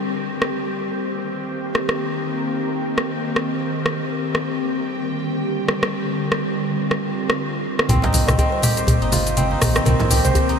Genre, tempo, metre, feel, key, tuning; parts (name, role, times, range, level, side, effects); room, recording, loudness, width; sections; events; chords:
afro house; 122 BPM; 4/4; swing 57% on 16ths; C minor; A4 = 440 Hz
ethereal airy pad; sustained chords; 0.0-10.6 s; D3 to G4; -23 LUFS; left 1 dB; ensemble chorus, built-in reverb, phaser
house drum kit; drums; 0.4-10.6 s; hi-hat, rim click, shaker, toms; -23 LUFS; equal
kora; arpeggios; 7.9-10.6 s; C4 to C5; -23 LUFS; right 1 dB; low-pass filter, tape echo
smooth gliding synth bass; bass; 7.9-10.3 s; G1 to C2; -22 LUFS; equal
congas; percussion; 7.9-10.5 s; -24 LUFS; right 2 dB
djembe; percussion; 7.9-10.6 s; -24 LUFS; equal
kalimba; melody; 8.3-10.6 s; Bb4 to Eb5; -26 LUFS; right 2 dB; tape echo
wet huge ambient reverb, RT60 7.6 s; dreamy mix soaked in reverb; -18 LUFS; side -6 dB against mid
0.0-7.9 A section; 7.9-10.6 B section
build-up 7.9-10.6; drum fill 7.9-10.6
0.0 Cm7; 4.0 Gsus4; 7.9 Cm7